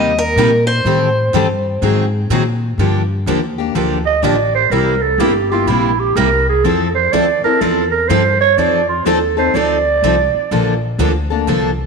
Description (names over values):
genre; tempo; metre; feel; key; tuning
acoustic string swing (jazz manouche); 124 BPM; 4/4; swing 65% on 8ths; G minor; A4 = 439 Hz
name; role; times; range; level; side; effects
picked steel-string acoustic guitar; melody; 0.0-2.1 s; Bb4 to Eb5; -16 LUFS; equal; none
picked steel-string acoustic guitar; accompaniment; 0.0-11.7 s; C3 to A4; -19 LUFS; left 11 dB; none
picked steel-string acoustic guitar; accompaniment; 0.0-11.7 s; C3 to A4; -21 LUFS; right 9 dB; none
upright bass; bass; 0.0-11.9 s; G1 to Bb2; -19 LUFS; left 1 dB; none
growling clarinet; second line; 4.1-11.0 s; E4 to Eb5; -14 LUFS; right 6 dB; none
room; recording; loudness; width
wet echo chamber reverb, RT60 1.8 s, studio ambience; 1960s-style stereo with parts hard left and right; -12 LUFS; side -4 dB against mid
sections
0.0-2.8 A section; 2.8-11.9 B section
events
clarinet solo 2.8-11.9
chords
0.0 Cm7; 0.9 Am7b5; 1.8 Ab9; 2.8 Gm9; 4.7 C7; 6.6 Fmaj7; 8.6 F7; 10.5 Bbmaj7